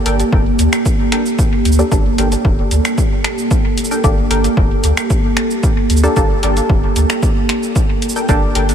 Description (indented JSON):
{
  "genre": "dub techno",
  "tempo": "113 BPM",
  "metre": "4/4",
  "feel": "straight",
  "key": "G minor",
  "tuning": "A4 = 440 Hz",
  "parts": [
    { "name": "deep dark ambient pad", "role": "sustained chords", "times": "0.0-8.7 s", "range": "Bb3 to D5", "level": "-18 LUFS", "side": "right 2 dB", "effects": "chorus, built-in reverb, sidechain pumping" },
    { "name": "filtered dub chord stab", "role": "stabs", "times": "0.0-8.6 s", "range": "Bb3 to A4", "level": "-22 LUFS", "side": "left 1 dB", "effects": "chorus, phaser, sidechain pumping, dub echo" },
    { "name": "wavetable chord stab", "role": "riff", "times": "0.1-8.7 s", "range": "D4 to G5", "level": "-27 LUFS", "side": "left 3 dB", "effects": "sidechain pumping, dub echo" },
    { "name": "soft dub sub bass", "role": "bass", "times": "0.1-8.7 s", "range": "F1 to D2", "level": "-16 LUFS", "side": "equal", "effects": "sidechain pumping" },
    { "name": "punchy analog drum machine", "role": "drums", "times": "0.1-8.7 s", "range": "finger snaps, hi-hat, shaker", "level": "-22 LUFS", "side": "equal", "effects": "dub echo" },
    { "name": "electronic kick drum", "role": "drums", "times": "0.3-8.4 s", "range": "none", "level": "-15 LUFS", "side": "equal", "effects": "none" }
  ],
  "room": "light reverb",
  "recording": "none",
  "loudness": "-12 LUFS",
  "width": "side -8 dB against mid",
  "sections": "0.0-8.7 A section",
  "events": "none",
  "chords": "0.0 Gmadd9"
}